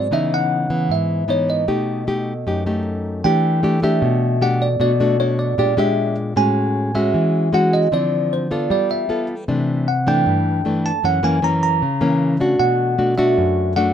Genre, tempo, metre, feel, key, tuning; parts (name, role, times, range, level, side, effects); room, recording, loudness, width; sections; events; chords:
bossa nova; 154 BPM; 4/4; straight; E minor from 3.2 s; A4 = 438 Hz
bell-like tine electric piano; melody; 0.0-13.9 s; C5 to A#5; -21 LUFS; right 2 dB; phaser
nylon-string guitar; accompaniment; 0.0-13.9 s; F#2 to A4; -18 LUFS; left 1 dB
moderate small room reverb, RT60 0.5 s; -16 LUFS; side -9 dB against mid
0.0-3.2 A section; 3.2-13.9 B section
0.1 C#m9; 1.7 B7b13; 3.2 Em7; 4.8 Bm7; 5.6 A#6; 6.4 A6; 7.9 Dm9; 8.7 G9; 9.5 C69; 11.0 F#7; 12.6 Bm7